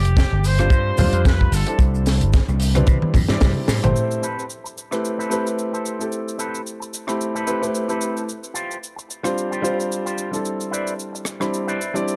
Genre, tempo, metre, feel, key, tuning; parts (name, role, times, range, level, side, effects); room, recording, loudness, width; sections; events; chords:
nu-disco, nu disco; 111 BPM; 4/4; swing 56% on 16ths; A minor; A4 = 441 Hz
clear trumpet section; melody; 0.0-1.8 s; G4 to C5; -29 LUFS; equal; vintage 12-bit sampler grit, delay
vintage slap bass; bass; 0.0-3.9 s; F1 to C3; -22 LUFS; equal
tight funk drum kit; drums; 0.1-12.2 s; cabasa, hi-hat, rim click, snare drum, toms; -29 LUFS; equal
maracas and congas; percussion; 0.1-3.9 s; -27 LUFS; equal
kick drum; drums; 0.2-3.5 s; -18 LUFS; equal
warm baby grand piano; accompaniment; 0.6-12.2 s; G3 to B5; -27 LUFS; equal; sidechain pumping, delay
electric guitar with an envelope filter; riff; 4.2-12.0 s; C4 to D5; -32 LUFS; equal; subtle chorus, low-pass filter, delay
light reverb, small room ambience; dark, warm production; -21 LUFS; mono
0.0-4.0 A section; 4.0-12.2 B section
drum fill 2.9-4.0
0.0 G7sus4; 1.8 Cmaj9; 4.0 Am9; 8.3 G7sus4; 10.4 Cmaj9